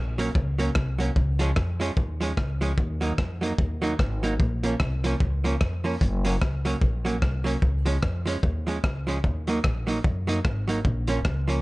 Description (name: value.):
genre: ska.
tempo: 149 BPM.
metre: 4/4.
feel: swing 59% on 8ths.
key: Db major.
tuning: A4 = 438 Hz.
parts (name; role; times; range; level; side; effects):
upright bass; bass; 0.0-11.6 s; Gb1 to Gb2; -27 LUFS; equal; none.
archtop guitar, miked and amplified; accompaniment; 0.2-11.6 s; F3 to Eb4; -29 LUFS; right 2 dB; none.
crunchy breakbeat drum kit; drums; 0.2-11.6 s; hi-hat, kick drum, rim click; -27 LUFS; equal; none.
room: little or no reverb.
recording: dark, warm production, nothing above 10.4 kHz.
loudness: -23 LUFS.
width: side -21 dB against mid.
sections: 0.0-11.6 A section.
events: none.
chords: 0.0 Gb; 1.2 Db; 2.8 Ebm; 4.4 Bbm; 6.0 Gb; 7.6 Db; 9.2 Ebm; 10.8 Bbm.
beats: 0.35 0.76 | 1.16 1.56 1.97 2.37 | 2.78 3.18 3.58 3.99 | 4.39 4.80 5.20 5.60 | 6.01 6.41 6.82 7.22 | 7.62 8.03 8.43 8.83 | 9.23 9.64 10.04 10.44 | 10.85 11.25.